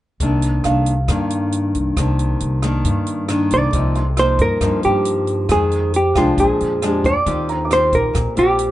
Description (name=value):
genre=bossa nova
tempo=136 BPM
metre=4/4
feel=straight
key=C minor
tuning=A4 = 439 Hz
part: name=nylon-string guitar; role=accompaniment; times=0.2-8.7 s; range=F2 to G4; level=-21 LUFS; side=left 1 dB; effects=none
part: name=upright bass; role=bass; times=0.2-8.7 s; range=Bb1 to G2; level=-21 LUFS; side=equal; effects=none
part: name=compact cocktail drum kit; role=drums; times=0.2-8.7 s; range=hi-hat, kick drum, rim click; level=-25 LUFS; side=equal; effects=none
part: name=dark baby grand piano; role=accompaniment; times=0.7-8.7 s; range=F5 to D6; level=-28 LUFS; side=right 3 dB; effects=none
part: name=hollow-body jazz guitar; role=melody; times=3.5-8.7 s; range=F4 to D5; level=-17 LUFS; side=right 1 dB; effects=none
room=moderate studio ambience, RT60 0.5 s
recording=rough home demo mix, nothing above 10.8 kHz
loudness=-15 LUFS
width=side -14 dB against mid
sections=0.2-3.7 A section; 3.7-8.7 B section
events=none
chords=0.2 Cm9; 3.7 Cm11; 5.5 Fm7; 6.4 Bb7; 7.3 Eb69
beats=| 0.20 0.65 1.09 1.53 | 1.97 2.41 2.85 3.29 | 3.73 4.18 4.62 5.06 | 5.50 5.94 6.38 6.82 | 7.27 7.71 8.15 8.59